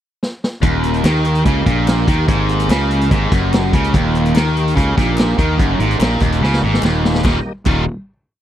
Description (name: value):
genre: classic rock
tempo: 145 BPM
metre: 4/4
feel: straight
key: Eb mixolydian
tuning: A4 = 440 Hz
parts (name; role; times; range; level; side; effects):
- vintage drum kit; drums; 0.2-7.8 s; crash cymbal, hi-hat, kick drum, snare drum; -18 LUFS; equal; none
- overdriven tonewheel organ; sustained chords; 0.6-7.5 s; Bb3 to Eb5; -26 LUFS; equal; slow rotary speaker, chorus vibrato
- overdriven electric guitar; riff; 0.6-7.8 s; Eb2 to Eb4; -17 LUFS; right 1 dB; none
- fuzz fingered electric bass; bass; 0.6-7.9 s; Eb1 to Eb2; -18 LUFS; equal; overdrive
- group handclap; percussion; 1.0-7.9 s; none; -34 LUFS; left 6 dB; none
room: little or no reverb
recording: dry, close 1970s-style studio recording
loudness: -13 LUFS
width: side -11 dB against mid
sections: 0.0-0.6 pickup bar; 0.6-7.2 riff; 7.2-8.4 final chord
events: drum fill 0.2-0.6, 6.4-7.2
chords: 0.0 N.C.; 0.6 Eb